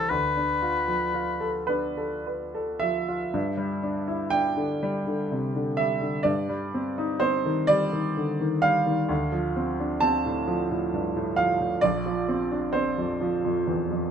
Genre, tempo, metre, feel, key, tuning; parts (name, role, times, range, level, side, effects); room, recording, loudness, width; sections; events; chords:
classical, impressionist duo for oboe and grand piano; 35-45 BPM (dotted quarters); 6/8; rubato; D dorian, G dorian from 3.3 s; A4 = 443 Hz
warm oboe; melody; 0.0-1.7 s; A4 to B4; -25 LUFS; left 4 dB
clear grand piano; accompaniment; 0.0-14.1 s; Bb1 to A5; -24 LUFS; right 1 dB
moderate studio reverb, RT60 0.6 s; minimal, uncompressed stereo recording; -24 LUFS; side -7 dB against mid
0.0-3.3 A section; 3.3-14.1 B section
0.1 Dm6; 3.3 G5; 6.3 Cm/G; 9.1 Dm7; 11.8 Bbadd9